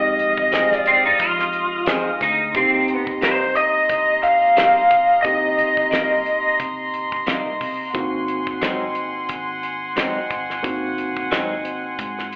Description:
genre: straight-eighth soul blues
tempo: 89 BPM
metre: 4/4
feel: swing 55% on 16ths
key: C minor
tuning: A4 = 439 Hz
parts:
  - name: lead guitar through a small cranked amp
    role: melody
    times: 0.0-6.5 s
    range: C5 to F5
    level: -16 LUFS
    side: equal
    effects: overdrive, slapback echo
  - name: reed electric piano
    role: accompaniment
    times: 0.0-12.4 s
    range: Ab3 to G4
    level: -28 LUFS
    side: right 1 dB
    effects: fast tremolo, slapback echo
  - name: rich chamber string section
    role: sustained chords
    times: 0.0-12.4 s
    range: Eb5 to Eb6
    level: -26 LUFS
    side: equal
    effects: none
  - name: vintage muted fingered electric bass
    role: bass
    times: 0.0-12.4 s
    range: Ab1 to F3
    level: -41 LUFS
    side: equal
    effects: none
  - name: damped 70s drum kit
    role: drums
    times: 0.2-12.4 s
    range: hi-hat, kick drum, snare drum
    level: -25 LUFS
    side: equal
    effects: none
  - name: clean electric guitar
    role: stabs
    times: 0.5-11.5 s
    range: Ab2 to Ab4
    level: -27 LUFS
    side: equal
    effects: spring reverb, slapback echo
  - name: electric guitar at the edge of break-up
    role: second line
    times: 0.9-3.1 s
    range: C4 to F4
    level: -18 LUFS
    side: equal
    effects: ensemble chorus
room: moderate club reverb, RT60 0.6 s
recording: live gig heard through the venue's PA, club reverb, telephone sound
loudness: -17 LUFS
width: side -26 dB against mid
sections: 0.0-12.4 A section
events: none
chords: 0.0 Fm7; 2.6 Cm7; 7.9 Ab7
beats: 0.53 1.20 1.88 | 2.55 3.23 3.90 4.58 | 5.25 5.92 6.60 7.27 | 7.95 8.62 9.30 9.97 | 10.64 11.32 11.99

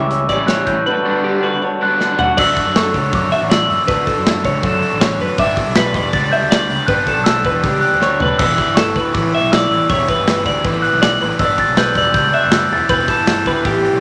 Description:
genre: math rock and midwest emo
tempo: 160 BPM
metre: 4/4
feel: straight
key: unclear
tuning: A4 = 440 Hz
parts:
  - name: glockenspiel with rubber mallets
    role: melody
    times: 0.0-14.0 s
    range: C#6 to B6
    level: -20 LUFS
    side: equal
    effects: none
  - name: electric guitar through a small old amp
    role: accompaniment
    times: 0.0-3.9 s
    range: G2 to G4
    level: -25 LUFS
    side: equal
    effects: harmonic tremolo
  - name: twelve-string electric guitar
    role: arpeggios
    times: 0.0-14.0 s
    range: G4 to F#5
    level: -21 LUFS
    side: equal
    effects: none
  - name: fuzz fingered electric bass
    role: bass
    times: 0.0-14.0 s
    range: E1 to F#2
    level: -26 LUFS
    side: equal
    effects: overdrive
  - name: modern studio drum kit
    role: drums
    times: 0.1-13.9 s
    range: crash cymbal, hi-hat, kick drum, snare drum, toms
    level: -22 LUFS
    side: equal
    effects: none
  - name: cranked stack guitar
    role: riff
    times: 0.3-14.0 s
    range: D3 to G4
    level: -24 LUFS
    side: equal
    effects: overdrive
room: wet large studio reverb, RT60 1.4 s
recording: none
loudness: -15 LUFS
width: mono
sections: 0.0-2.4 A section; 2.4-14.0 B section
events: drum fill 2.0-2.4, 8.0-8.4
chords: 0.0 A7; 0.9 Gmaj7; 2.4 Dmaj9; 5.4 Em9; 11.4 G6; 12.7 Em7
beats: 0.12 0.49 | 0.87 1.25 1.63 2.00 | 2.38 2.76 3.13 3.51 | 3.88 4.26 4.64 5.01 | 5.39 5.76 6.14 6.51 | 6.89 7.26 7.64 8.02 | 8.39 8.77 9.14 9.52 | 9.89 10.27 10.65 11.02 | 11.40 11.77 12.15 12.53 | 12.90 13.28 13.66

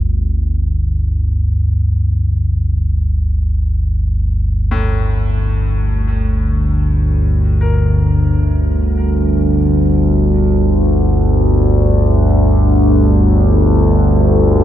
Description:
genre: dark ambient drone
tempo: free time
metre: none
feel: none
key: G minor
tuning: A4 = 442 Hz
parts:
  - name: analog drone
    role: drone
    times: 0.0-14.6 s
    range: G1 to D2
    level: -12 LUFS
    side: equal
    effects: lush chorus
  - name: bright grand piano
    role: arpeggios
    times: 4.7-14.6 s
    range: A2 to Bb4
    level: -28 LUFS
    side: left 4 dB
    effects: tape echo
room: light reverb, small room ambience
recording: none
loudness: -12 LUFS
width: side -12 dB against mid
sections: 0.0-14.6 A section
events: fade-in on grand piano 0.0-14.6; filter sweep on synth drone 0.0-14.6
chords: 0.0 Gmadd9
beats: free time

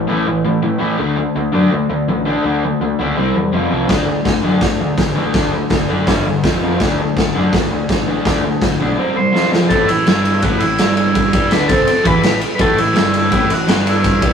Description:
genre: garage rock duo or trio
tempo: 166 BPM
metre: 4/4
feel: straight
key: unclear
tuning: A4 = 440 Hz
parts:
  - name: raw garage guitar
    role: riff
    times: 0.0-14.3 s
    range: F2 to G4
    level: -16 LUFS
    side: equal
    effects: overdrive
  - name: growling picked electric bass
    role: bass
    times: 0.0-14.3 s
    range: F1 to A2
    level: -21 LUFS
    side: left 1 dB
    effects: overdrive, tube saturation
  - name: raw garage drum kit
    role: drums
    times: 3.9-14.3 s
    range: hi-hat, kick drum, ride cymbal, snare drum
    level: -17 LUFS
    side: equal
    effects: none
  - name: combo organ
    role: melody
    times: 9.2-14.3 s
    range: E4 to C5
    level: -17 LUFS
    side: equal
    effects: spring reverb
room: light reverb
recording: rough rehearsal-room recording, tube saturation, small room ambience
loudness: -13 LUFS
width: side -7 dB against mid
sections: 0.0-9.7 A section; 9.7-14.3 B section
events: drum fill 9.3-9.7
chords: 0.0 A5; 1.0 D5; 3.2 C5; 3.5 F5; 3.9 D; 6.1 G5; 6.4 F5; 6.8 D5; 9.0 C5; 9.3 F5; 9.7 A5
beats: 0.27 0.64 | 1.00 1.36 1.72 2.08 | 2.45 2.81 3.17 3.53 | 3.90 4.26 4.62 4.99 | 5.35 5.71 6.08 6.44 | 6.80 7.17 7.53 7.89 | 8.26 8.62 8.98 9.35 | 9.71 10.07 10.43 10.80 | 11.16 11.52 11.88 12.24 | 12.60 12.96 13.33 13.69 | 14.05

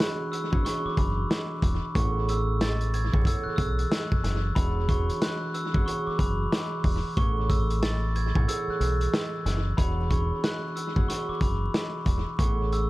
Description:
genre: hip hop, boom-bap hip-hop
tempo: 92 BPM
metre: 4/4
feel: swing 62% on 16ths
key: unclear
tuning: A4 = 439 Hz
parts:
  - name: glockenspiel with soft plastic mallets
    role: melody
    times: 0.0-12.9 s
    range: B5 to A6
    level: -32 LUFS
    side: left 1 dB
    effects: high-pass filter, low-pass filter, tape echo
  - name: concert harp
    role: accompaniment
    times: 0.0-12.9 s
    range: A2 to C#5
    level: -32 LUFS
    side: right 2 dB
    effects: cassette tape, high-pass filter, low-pass filter
  - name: crunchy breakbeat drum kit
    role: drums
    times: 0.0-12.9 s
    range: hi-hat, kick drum, snare drum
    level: -27 LUFS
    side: equal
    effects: tape echo
  - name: deep dub fingered electric bass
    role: bass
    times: 0.5-12.9 s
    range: E1 to B1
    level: -27 LUFS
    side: equal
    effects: none
room: little or no reverb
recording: echo-heavy mix, vinyl crackle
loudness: -24 LUFS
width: side -18 dB against mid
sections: 0.0-9.8 A section; 9.8-12.9 B section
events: kick muted 8.5-9.8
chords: 0.0 E13; 2.0 Amaj7; 4.6 E13; 7.2 Amaj7; 9.8 E13; 12.4 Amaj7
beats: 0.00 0.65 1.30 | 1.95 2.60 3.26 3.91 | 4.56 5.21 5.87 6.52 | 7.17 7.82 8.47 9.13 | 9.78 10.43 11.08 11.74 | 12.39

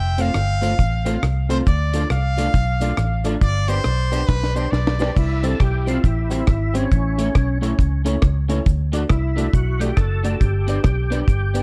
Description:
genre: ska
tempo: 137 BPM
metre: 4/4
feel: swing 62% on 8ths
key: C major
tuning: A4 = 440 Hz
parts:
  - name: brilliant trumpet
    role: melody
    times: 0.0-5.2 s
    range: B4 to G5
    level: -28 LUFS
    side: equal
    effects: tape echo
  - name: vintage muted fingered electric bass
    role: bass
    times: 0.0-11.6 s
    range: F1 to D2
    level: -23 LUFS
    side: equal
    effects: none
  - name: electric guitar at the edge of break-up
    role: accompaniment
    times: 0.2-11.6 s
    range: G3 to G4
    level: -29 LUFS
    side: equal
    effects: ensemble chorus
  - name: dark upright piano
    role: stabs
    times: 0.2-11.6 s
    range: C4 to D5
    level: -31 LUFS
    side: equal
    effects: none
  - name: deep reggae drum kit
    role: drums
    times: 0.2-11.6 s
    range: crash cymbal, hi-hat, kick drum, rim click, snare drum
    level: -22 LUFS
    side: equal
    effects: none
  - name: cabasa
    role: percussion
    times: 0.2-11.6 s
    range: none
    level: -49 LUFS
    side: equal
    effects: none
  - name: overdriven tonewheel organ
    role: melody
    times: 5.0-11.6 s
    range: Db4 to A4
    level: -29 LUFS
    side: equal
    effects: chorus vibrato, slow rotary speaker, tape echo
room: light reverb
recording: dark, warm production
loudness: -20 LUFS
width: mono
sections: 0.0-5.2 A section; 5.2-11.6 B section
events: trumpet solo 0.0-5.2; drum fill 4.3-5.2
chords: 0.0 F; 1.7 Dm; 3.4 G; 5.2 C; 6.9 A; 8.7 D; 10.4 G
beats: 0.35 0.79 1.23 | 1.67 2.10 2.54 2.98 | 3.42 3.85 4.29 4.73 | 5.16 5.60 6.04 6.47 | 6.91 7.35 7.78 8.22 | 8.66 9.09 9.53 9.97 | 10.40 10.84 11.28

